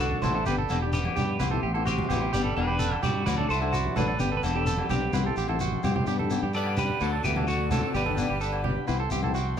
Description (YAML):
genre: highlife guitar band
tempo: 128 BPM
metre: 4/4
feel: straight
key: G major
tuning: A4 = 440 Hz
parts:
  - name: electric guitar at the edge of break-up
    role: melody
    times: 0.0-8.8 s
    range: A3 to D5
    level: -31 LUFS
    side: left 1 dB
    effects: phaser
  - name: fingerpicked steel-string acoustic guitar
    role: accompaniment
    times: 0.0-9.6 s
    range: E3 to G4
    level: -33 LUFS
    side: left 8 dB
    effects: none
  - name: combo organ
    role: sustained chords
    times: 0.0-9.6 s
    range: D5 to C6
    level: -40 LUFS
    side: left 1 dB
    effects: none
  - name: semi-hollow electric guitar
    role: arpeggios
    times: 0.0-9.6 s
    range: F#4 to B4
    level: -32 LUFS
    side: right 8 dB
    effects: tape echo
  - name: fingered electric bass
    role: bass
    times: 0.0-9.6 s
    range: E1 to G2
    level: -30 LUFS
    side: equal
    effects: none
  - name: congas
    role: percussion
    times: 0.1-9.6 s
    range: none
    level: -33 LUFS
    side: right 1 dB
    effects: none
  - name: agogo bells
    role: percussion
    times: 0.2-9.3 s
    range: none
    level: -38 LUFS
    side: left 8 dB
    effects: none
  - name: shekere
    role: percussion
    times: 0.2-9.6 s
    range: none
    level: -35 LUFS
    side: left 1 dB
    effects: none
  - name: raspy tenor saxophone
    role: second line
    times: 6.6-8.8 s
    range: D3 to B3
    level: -37 LUFS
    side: left 4 dB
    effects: none
room: moderate studio reverb, RT60 0.5 s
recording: none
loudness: -24 LUFS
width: side -8 dB against mid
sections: 0.0-6.1 A section; 6.1-9.6 B section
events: drum fill 5.5-6.1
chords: 0.5 G; 1.4 C; 2.3 G; 3.3 D; 4.2 G; 5.1 C; 6.1 G; 7.0 D; 7.9 G; 8.9 C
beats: 0.00 | 0.47 0.94 1.40 1.87 | 2.34 2.80 3.27 3.73 | 4.20 4.67 5.13 5.60 | 6.07 6.54 7.00 7.47 | 7.94 8.41 8.87 9.34